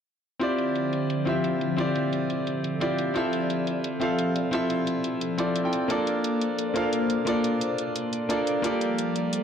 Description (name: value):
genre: liquid drum and bass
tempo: 175 BPM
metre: 4/4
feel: straight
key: unclear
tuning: A4 = 440 Hz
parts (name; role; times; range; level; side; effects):
- clear grand piano; accompaniment; 0.4-9.4 s; Bb3 to G5; -25 LUFS; equal; low-pass filter, tape echo
- airy breathy pad; sustained chords; 0.7-9.4 s; D3 to D5; -30 LUFS; left 1 dB; chorus, phaser
- electronic hi-hat; drums; 0.4-9.4 s; none; -36 LUFS; right 1 dB; overdrive, low-pass filter on hats, low-pass filter on room
room: moderate plate reverb, RT60 1.2 s, digital ambience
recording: dark, warm production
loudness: -24 LUFS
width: side -8 dB against mid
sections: 0.4-9.4 A section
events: filter sweep on analog synth pad 0.4-9.4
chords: 0.4 Dm11; 3.2 Fmaj7; 5.9 Bbmaj7; 8.6 Gm9